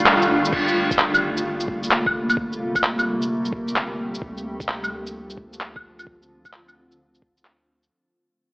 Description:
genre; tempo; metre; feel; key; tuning
future garage; 130 BPM; 4/4; swing 66% on 16ths; G minor; A4 = 440 Hz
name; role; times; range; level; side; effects
granular cloud pad; sustained chords; 0.0-7.9 s; C3 to G4; -24 LUFS; equal; built-in reverb, sidechain pumping
soft dub sub bass; bass; 0.0-7.9 s; F1 to D2; -40 LUFS; equal; sidechain pumping
drifting glass-harmonics texture; texture; 0.0-0.5 s; F5; -29 LUFS; equal; chorus, built-in reverb
lo-fi sampler-style drum kit; drums; 0.1-7.9 s; claves, crash cymbal, handclaps, shaker; -20 LUFS; equal; small room ambience
electronic kick drum; drums; 0.5-7.3 s; none; -31 LUFS; equal; small room ambience
room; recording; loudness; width
wet lush hall reverb, RT60 2.0 s; cassette tape, AM radio sound; -20 LUFS; side -31 dB against mid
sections
0.5-7.9 A section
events
band accent 0.1; fade-out 0.5-7.9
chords
0.0 F13; 0.5 Gm11; 4.2 Dm7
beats
0.06 | 0.53 0.99 1.45 1.91 | 2.37 2.83 3.29 3.75 | 4.22 4.68 5.14 5.60 | 6.06 6.53 6.99 7.45

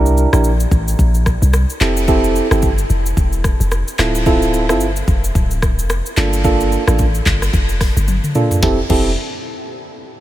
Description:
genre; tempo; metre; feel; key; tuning
afrobeats; 110 BPM; 4/4; swing 58% on 16ths; F major; A4 = 436 Hz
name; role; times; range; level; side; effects
soft electric-piano-like synth keys; accompaniment; 0.0-9.1 s; Bb3 to Bb4; -19 LUFS; right 2 dB; chorus
warm 808-style bass; bass; 0.0-9.2 s; D1 to C2; -16 LUFS; equal; none
afro-pop drum kit; drums; 0.1-9.0 s; crash cymbal, handclaps, hi-hat, kick drum, rim click, shaker, snare drum, toms; -18 LUFS; equal; none
room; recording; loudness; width
light reverb; none; -13 LUFS; side -14 dB against mid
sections
0.0-8.6 A section; 8.6-10.2 B section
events
drum fill 8.1-8.6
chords
0.0 C7; 1.8 Fmaj7; 4.0 Dm7; 6.2 Gm7; 8.6 Fmaj7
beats
0.44 0.99 1.53 | 2.08 2.63 3.17 3.72 | 4.26 4.81 5.35 5.90 | 6.44 6.99 7.54 8.08 | 8.63

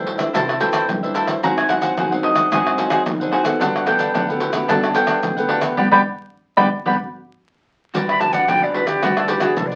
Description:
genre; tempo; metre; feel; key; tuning
samba and choro; 111 BPM; 4/4; straight; G major; A4 = 442 Hz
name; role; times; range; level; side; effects
mandolin; second line; 0.0-7.0 s; Eb5 to B5; -22 LUFS; equal; none
cavaquinho; accompaniment; 0.0-9.8 s; D4 to Gb5; -24 LUFS; equal; none
nylon-string guitar; accompaniment; 0.0-9.8 s; G2 to B4; -26 LUFS; equal; none
upright bass; bass; 0.0-9.8 s; G1 to G2; -35 LUFS; equal; none
pandeiro, maracas, tamborim and surdo; percussion; 0.1-9.8 s; none; -26 LUFS; equal; none
jazz flute; melody; 8.1-9.8 s; F#4 to B5; -21 LUFS; equal; none
room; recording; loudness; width
wet studio reverb, RT60 0.5 s; very old 78 rpm record, vinyl crackle; -18 LUFS; mono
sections
0.0-7.9 A section; 7.9-9.8 B section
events
mandolin solo 0.0-7.9; band accent 5.8-7.9; flute solo 7.9-9.8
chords
0.0 C69; 1.4 Ab7#11; 3.6 Gmaj9; 7.9 Gmaj7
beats
0.35 0.89 | 1.44 1.98 2.52 3.06 | 3.60 4.15 4.69 5.23 | 5.78 6.32 6.86 7.41 | 7.95 8.49 9.03 9.57

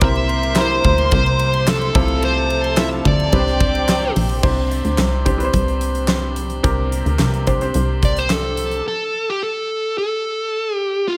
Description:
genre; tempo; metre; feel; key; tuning
piano-driven pop; 108 BPM; 4/4; straight; unclear; A4 = 440 Hz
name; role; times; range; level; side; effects
dark smooth lead guitar; melody; 0.0-4.1, 8.0-11.2 s; F4 to E5; -23 LUFS; equal; overdrive
dark studio violin section; second line; 0.0-4.4 s; G4 to C6; -28 LUFS; equal; none
bright upright piano; accompaniment; 0.0-8.9 s; C3 to C5; -25 LUFS; equal; none
tonewheel organ; sustained chords; 0.0-8.8 s; C3 to E5; -34 LUFS; equal; overdrive, stopped rotary speaker
plucky analog bass; bass; 0.0-8.8 s; Bb1 to D2; -23 LUFS; equal; none
huge arena drum kit; drums; 0.0-8.8 s; crash cymbal, handclaps, hi-hat, kick drum, ride cymbal, snare drum; -23 LUFS; equal; none
room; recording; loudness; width
light reverb, studio ambience; none; -18 LUFS; mono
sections
0.0-4.4 A section; 4.4-8.9 B section; 8.9-11.2 C section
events
none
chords
0.0 C7; 1.9 Fmaj7/C; 3.3 Csus2; 8.9 N.C.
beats
| 0.02 0.57 1.12 1.67 | 2.22 2.78 3.33 3.88 | 4.43 4.99 5.54 6.09 | 6.64 7.20 7.75 8.30 | 8.86 9.41 9.97 10.52 | 11.07

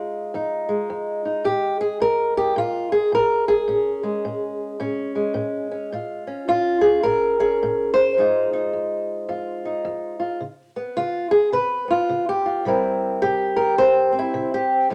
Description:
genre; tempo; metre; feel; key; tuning
acoustic country blues, solo or duo; 107 BPM; 4/4; swing 61% on 8ths; unclear; A4 = 440 Hz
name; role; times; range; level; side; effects
fingerpicked old ladder-braced acoustic guitar; solo; 0.0-14.9 s; F2 to C5; -22 LUFS; equal; none
room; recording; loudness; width
moderate studio reverb, RT60 0.8 s; none; -22 LUFS; mono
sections
0.0-14.9 A section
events
none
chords
0.0 Fm7; 1.4 Bbm7; 8.2 Fm7; 10.4 Db7; 12.7 C7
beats
0.31 0.87 | 1.43 1.99 2.55 3.11 | 3.67 4.23 4.79 5.36 | 5.92 6.48 7.04 7.60 | 8.16 8.72 9.29 9.85 | 10.41 10.97 11.53 12.10 | 12.66 13.22 13.78 14.35 | 14.91

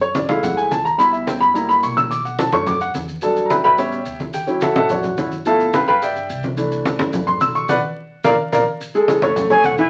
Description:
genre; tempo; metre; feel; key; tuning
Afro-Cuban jazz; 215 BPM; 4/4; straight; unclear; A4 = 440 Hz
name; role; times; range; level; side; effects
clear grand piano; accompaniment; 0.0-9.9 s; D3 to E6; -19 LUFS; equal; none
upright bass; bass; 0.0-9.9 s; E1 to G2; -35 LUFS; equal; none
congas; percussion; 0.0-9.9 s; none; -26 LUFS; equal; none
maracas; percussion; 0.0-9.9 s; none; -40 LUFS; equal; none
breathy bright jazz flute; melody; 9.5-9.9 s; F#5 to G#5; -17 LUFS; equal; none
room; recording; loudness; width
wet studio reverb, RT60 0.6 s; very old 78 rpm record, vinyl crackle; -18 LUFS; mono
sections
0.0-8.8 A section; 8.8-9.9 A section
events
grand piano solo 0.0-8.8; band accent 7.7-8.8; flute solo 8.8-9.9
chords
0.0 F#m9; 1.0 C#m7b5; 1.6 F#7b9; 2.1 Bm9; 3.2 Em7; 3.8 A9; 4.3 Dmaj9; 5.5 G13; 6.6 C69; 7.7 Bm; 8.2 Bb; 8.8 Amaj7; 9.4 F#m7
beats
0.15 0.43 0.71 | 0.99 1.27 1.55 1.83 | 2.11 2.39 2.67 2.95 | 3.23 3.50 3.78 4.06 | 4.34 4.62 4.90 5.18 | 5.46 5.74 6.02 6.29 | 6.57 6.85 7.13 7.41 | 7.69 7.97 8.25 8.53 | 8.80 9.08 9.36 9.64

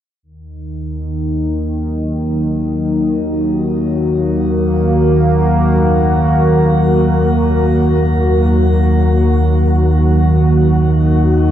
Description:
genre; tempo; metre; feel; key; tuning
dark ambient drone; free time; none; none; Eb minor; A4 = 440 Hz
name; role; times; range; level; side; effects
sweeping resonant pad; sustained chords; 0.2-11.5 s; Eb3 to Gb4; -15 LUFS; equal; chorus, shimmer reverb
analog drone; drone; 0.5-11.5 s; Eb2 to Eb3; -14 LUFS; equal; chorus
carillon bells; arpeggios; 5.8-11.5 s; Gb3 to Bb4; -30 LUFS; right 3 dB; none
room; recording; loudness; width
moderate huge ambient reverb, RT60 8.4 s; none; -11 LUFS; side -10 dB against mid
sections
0.2-11.5 A section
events
filter sweep on synth drone 0.2-11.5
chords
0.2 Ebm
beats
free time

